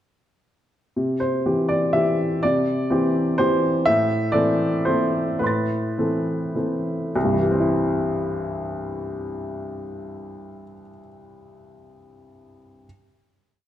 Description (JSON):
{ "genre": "neoclassical minimalist piano", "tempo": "101-126 BPM", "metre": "3/4", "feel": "rubato", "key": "C major", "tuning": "A4 = 440 Hz", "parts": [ { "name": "warm upright piano", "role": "solo", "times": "1.0-12.9 s", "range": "C2 to A6", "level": "-20 LUFS", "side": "equal", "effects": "none" } ], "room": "moderate scoring stage reverb, RT60 1.6 s", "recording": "dark, warm production", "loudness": "-20 LUFS", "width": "side -11 dB against mid", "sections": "1.0-7.1 A section; 7.1-10.6 final chord", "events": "slowing down 3.2-7.1", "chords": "1.0 C; 3.9 Amadd9; 7.1 C" }